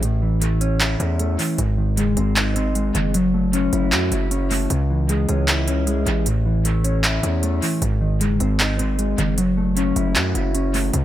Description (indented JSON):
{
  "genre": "hip hop, trap",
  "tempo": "154 BPM",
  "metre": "4/4",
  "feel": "half-time",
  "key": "unclear",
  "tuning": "A4 = 437 Hz",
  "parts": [
    { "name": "mellow electric guitar", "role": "accompaniment", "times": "0.0-11.0 s", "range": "G#2 to F#4", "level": "-20 LUFS", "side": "left 1 dB", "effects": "analog chorus" },
    { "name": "distorted 808-style bass", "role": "bass", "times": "0.0-11.0 s", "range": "F#1 to F#2", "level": "-22 LUFS", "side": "equal", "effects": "distortion" },
    { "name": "trap drum kit", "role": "drums", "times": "0.0-11.0 s", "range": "handclaps, hi-hat", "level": "-24 LUFS", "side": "right 1 dB", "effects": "overdrive, dub echo" }
  ],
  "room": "little or no reverb",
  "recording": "echo-heavy mix",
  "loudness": "-18 LUFS",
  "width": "side -12 dB against mid",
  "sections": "0.0-10.9 A section",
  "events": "none",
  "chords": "0.0 A; 1.6 G#; 3.1 F#m7; 4.7 C#m; 6.3 A; 7.8 G#; 9.4 F#m7",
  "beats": "| 0.03 0.41 0.81 1.20 | 1.58 1.97 2.36 2.75 | 3.14 3.53 3.92 4.31 | 4.70 5.09 5.48 5.87 | 6.26 6.65 7.04 7.43 | 7.82 8.21 8.60 8.99 | 9.38 9.77 10.16 10.54 | 10.94"
}